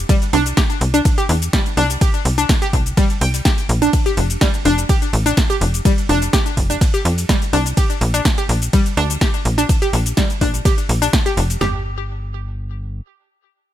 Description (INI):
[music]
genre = progressive house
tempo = 125 BPM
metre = 4/4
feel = straight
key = unclear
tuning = A4 = 441 Hz
[part]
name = tight sequencer bass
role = bass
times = 0.0-13.0 s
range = F1 to F2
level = -19 LUFS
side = equal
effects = sidechain pumping
[part]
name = analog pluck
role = arpeggios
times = 0.1-11.8 s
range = G3 to G5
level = -20 LUFS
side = equal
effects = chorus, sidechain pumping, ping-pong delay
[part]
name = deep house drum kit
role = drums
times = 0.1-11.7 s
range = kick drum, snare drum, toms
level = -17 LUFS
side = equal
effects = overdrive
[part]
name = deep house drum kit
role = drums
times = 0.1-11.6 s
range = hi-hat, ride cymbal, shaker, snare drum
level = -23 LUFS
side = equal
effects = overdrive
[sound]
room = digital ambience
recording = none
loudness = -14 LUFS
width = side -12 dB against mid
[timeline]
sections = 0.0-11.6 A section; 11.6-13.7 B section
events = drop 0.0-11.6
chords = 0.1 C5; 3.9 N.C.; 7.8 Bb; 11.6 N.C.